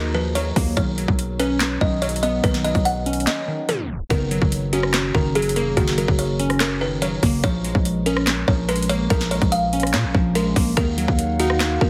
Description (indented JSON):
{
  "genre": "hip hop, trap",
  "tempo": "144 BPM",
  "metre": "4/4",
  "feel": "half-time",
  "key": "F# major",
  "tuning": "A4 = 440 Hz",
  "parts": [
    { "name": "buzzing kalimba", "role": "melody", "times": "0.0-11.9 s", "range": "F#4 to F#5", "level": "-27 LUFS", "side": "equal", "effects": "low-pass filter, tape echo" },
    { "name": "glassy wavetable pluck", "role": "accompaniment", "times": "0.0-11.9 s", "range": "D#3 to D#4", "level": "-28 LUFS", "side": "equal", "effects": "chorus, low-pass filter" },
    { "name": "growling 808-style bass", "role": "bass", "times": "0.0-11.9 s", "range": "E#1 to A#2", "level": "-26 LUFS", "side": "equal", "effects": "none" },
    { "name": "trap drum kit", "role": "drums", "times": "0.4-11.9 s", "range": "handclaps, hi-hat, kick drum, rim click, snare drum", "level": "-25 LUFS", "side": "equal", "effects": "overdrive" },
    { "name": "glass harmonica", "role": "sustained chords", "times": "10.8-11.9 s", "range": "D#4 to F#5", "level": "-30 LUFS", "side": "equal", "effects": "none" }
  ],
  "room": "digital ambience",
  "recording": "heavily compressed radio sound, tape stop",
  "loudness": "-21 LUFS",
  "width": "mono",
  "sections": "0.0-4.1 A section; 4.1-11.9 B section",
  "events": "break 3.3-4.1; tape stop 3.7-4.1",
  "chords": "0.0 D#madd9; 0.8 Badd9; 4.1 F#6; 7.4 A#m7; 10.8 D#madd9"
}